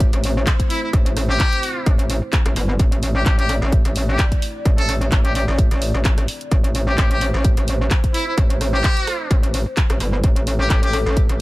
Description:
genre	bass house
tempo	129 BPM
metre	4/4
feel	swing 55% on 16ths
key	A minor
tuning	A4 = 440 Hz
part	dark analog pad	sustained chords	0.0-11.4 s	A3 to D5	-30 LUFS	equal	chorus, sidechain pumping
part	metallic wobble bass	bass	0.0-11.4 s	G1 to A1	-20 LUFS	equal	chorus, tube saturation, sidechain pumping
part	electronic kick drum	drums	0.0-11.3 s	none	-17 LUFS	equal	none
part	garage drum kit	drums	0.0-11.4 s	handclaps, hi-hat, rim click	-26 LUFS	equal	none
part	trumpet with metal mute	melody	0.7-11.0 s	E4 to A4	-24 LUFS	left 1 dB	tape echo
room	little or no reverb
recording	none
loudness	-16 LUFS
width	side -19 dB against mid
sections	0.0-11.4 A section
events	none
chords	0.0 Am

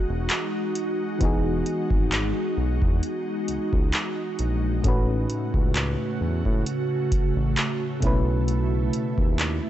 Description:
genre	contemporary R&B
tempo	66 BPM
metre	4/4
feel	swing 54% on 16ths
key	E major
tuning	A4 = 440 Hz
part	FM electric piano with auto-pan	accompaniment	0.0-9.7 s	A2 to B4	-30 LUFS	left 1 dB	none
part	ethereal airy pad	sustained chords	0.0-9.7 s	B2 to F#4	-28 LUFS	right 1 dB	ensemble chorus, built-in reverb
part	smooth synth bass	bass	0.1-9.6 s	E1 to A2	-26 LUFS	equal	none
part	booming analog drum machine	drums	0.3-9.6 s	handclaps, hi-hat, kick drum	-24 LUFS	equal	overdrive, vintage 12-bit sampler grit
room	light reverb, digital ambience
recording	dry, gritty hardware recording, cassette tape, nothing above 8.0 kHz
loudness	-22 LUFS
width	side -12 dB against mid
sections	0.0-9.7 A section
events	none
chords	0.0 Emaj7; 4.8 A6; 8.0 B7sus4

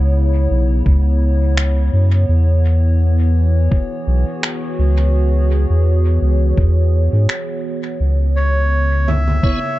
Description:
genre	ambient dub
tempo	84 BPM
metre	4/4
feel	swing 55% on 16ths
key	unclear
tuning	A4 = 440 Hz
part	warbly tape-like pad	sustained chords	0.0-9.8 s	C#3 to C#5	-22 LUFS	equal	chorus, built-in reverb, vintage 12-bit sampler grit
part	soft dub sub bass	bass	0.0-9.4 s	B1 to G#2	-13 LUFS	equal	none
part	electronic kick drum	drums	0.9-9.6 s	none	-16 LUFS	equal	none
part	electronic finger snaps and congas	drums	1.6-9.4 s	none	-25 LUFS	right 1 dB	overdrive, dub echo
part	melodica	melody	8.4-9.8 s	C#5 to E5	-20 LUFS	equal	dub echo
part	tonewheel organ	stabs	9.4-9.6 s	B3 to C#5	-24 LUFS	right 2 dB	overdrive, chorus vibrato, slow rotary speaker, dub echo
room	digital ambience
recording	echo-heavy mix, nothing above 8.0 kHz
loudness	-13 LUFS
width	side -16 dB against mid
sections	0.0-9.8 A section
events	none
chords	0.0 C#m7; 2.3 E6; 8.0 C#m7

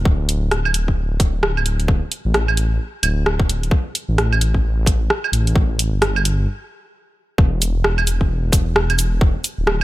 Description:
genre	future garage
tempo	131 BPM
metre	4/4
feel	swing 62% on 16ths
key	E minor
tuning	A4 = 440 Hz
part	dark detuned saw bass	bass	0.0-9.8 s	D1 to A1	-19 LUFS	equal	sidechain pumping
part	electronic kick drum	drums	0.1-9.3 s	none	-17 LUFS	equal	overdrive
part	garage drum kit	drums	0.3-9.8 s	cabasa, claves, hi-hat, rim click	-20 LUFS	right 2 dB	none
room	little or no reverb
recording	none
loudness	-16 LUFS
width	side -17 dB against mid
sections	0.0-7.4 A section; 7.4-9.8 B section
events	stop 6.5-7.4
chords	none

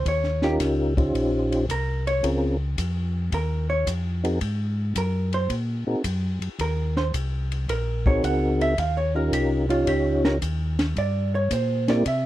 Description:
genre	soul jazz organ trio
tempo	110 BPM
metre	4/4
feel	swing 68% on 8ths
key	Eb mixolydian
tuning	A4 = 441 Hz
part	vintage hollow-body jazz guitar	accompaniment	0.0-12.3 s	F4 to Gb5	-26 LUFS	right 3 dB	none
part	mellow tonewheel organ	bass	0.0-12.3 s	Bb1 to C3	-25 LUFS	left 1 dB	slow rotary speaker
part	compact cocktail drum kit	drums	0.1-12.2 s	hi-hat, kick drum, ride cymbal, snare drum	-30 LUFS	left 1 dB	none
part	percussive tonewheel organ	melody	0.4-12.0 s	Bb3 to Db5	-23 LUFS	equal	slow rotary speaker, chorus vibrato
room	little or no reverb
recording	dry, close 1970s-style studio recording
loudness	-22 LUFS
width	side -14 dB against mid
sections	0.0-12.3 A section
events	hollow-body jazz guitar solo 0.0-12.3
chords	0.0 Eb9; 2.2 Bbm7; 3.3 Ebsus2; 4.4 Ab9; 8.8 Eb9; 11.0 Gm

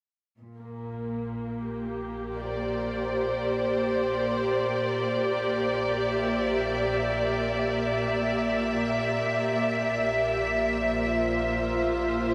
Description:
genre	ambient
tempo	54 BPM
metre	4/4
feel	straight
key	Bb lydian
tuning	A4 = 440 Hz
part	warm studio string section	sustained chords	0.4-12.3 s	Bb2 to E5	-27 LUFS	equal	none
part	round analog bass	bass	0.4-12.3 s	Bb1	-44 LUFS	equal	none
room	wet huge ambient reverb, RT60 7.7 s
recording	none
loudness	-27 LUFS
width	mono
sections	0.4-12.3 A section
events	fade-in on analog synth bass 0.4-12.3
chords	0.4 Bb6; 4.9 C7/Bb; 9.4 Dm7/Bb

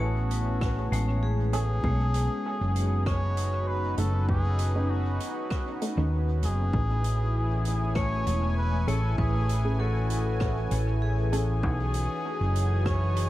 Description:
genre	ambient dub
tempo	98 BPM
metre	4/4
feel	straight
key	B mixolydian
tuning	A4 = 439 Hz
part	trumpet with cup mute	melody	0.0-13.3 s	F#4 to C#5	-34 LUFS	equal	dub echo
part	warm analog pad	sustained chords	0.0-13.3 s	E3 to G#5	-34 LUFS	equal	chorus
part	vibraphone with hard mallets	arpeggios	0.0-3.2, 8.0-13.0 s	G#3 to A5	-36 LUFS	left 2 dB	dub echo
part	hollow-body short-scale fingered electric bass	bass	0.0-13.3 s	E1 to D#2	-26 LUFS	equal	none
part	soft-mallet drum kit	drums	0.3-13.3 s	hi-hat, rim click	-42 LUFS	right 2 dB	dub echo
part	electronic kick drum	drums	0.6-13.0 s	none	-30 LUFS	equal	overdrive
part	filtered dub chord stab	stabs	1.5-11.5 s	A3 to G#4	-39 LUFS	right 1 dB	none
part	bubbling stepped-filter texture	texture	6.7-13.3 s	A3 to G#5	-42 LUFS	right 1 dB	chorus, built-in reverb
room	light reverb, studio reverb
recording	vinyl crackle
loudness	-24 LUFS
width	side -15 dB against mid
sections	0.0-13.3 A section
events	none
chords	0.0 Amaj7; 1.8 B9; 6.7 Amaj7; 11.6 B9

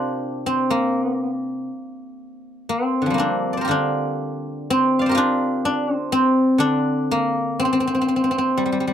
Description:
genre	chinese traditional, Chinese solo plucked strings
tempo	61 BPM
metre	2/4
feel	uneven beats, rubato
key	unclear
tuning	A4 = 440 Hz
part	guzheng	solo	0.0-8.9 s	C3 to G5	-19 LUFS	equal	none
room	moderate studio reverb, RT60 0.5 s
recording	dry, close 1970s-style studio recording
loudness	-18 LUFS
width	side -9 dB against mid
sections	0.0-8.9 A section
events	none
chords	none

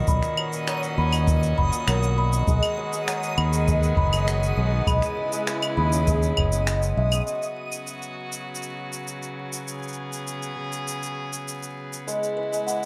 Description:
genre	folktronica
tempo	100 BPM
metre	4/4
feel	straight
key	B major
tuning	A4 = 440 Hz
part	rich string quartet	sustained chords	0.0-12.9 s	C#3 to G#4	-35 LUFS	equal	none
part	hammered dulcimer	arpeggios	0.0-12.9 s	A#2 to B3	-30 LUFS	equal	tape echo
part	backwards swelling texture	texture	0.0-7.3 s	D#6	-39 LUFS	equal	built-in reverb
part	music box	second line	0.1-7.1, 12.1-12.8 s	A#4 to B5	-34 LUFS	equal	tape echo
part	fingered electric bass	bass	0.1-7.2 s	F#1 to D#2	-25 LUFS	equal	none
part	electronic shaker, finger snaps and claves	drums	0.1-12.9 s	none	-32 LUFS	equal	overdrive
part	kick drum	drums	0.1-6.5 s	none	-27 LUFS	equal	none
room	light reverb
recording	vinyl crackle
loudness	-25 LUFS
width	mono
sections	0.0-7.3 A section; 7.3-12.9 B section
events	filter sweep on hammered dulcimer 0.0-7.3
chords	0.0 Bmaj7; 2.5 G#m7/B; 4.9 C#m7/B; 7.3 Bsus2; 12.1 E6

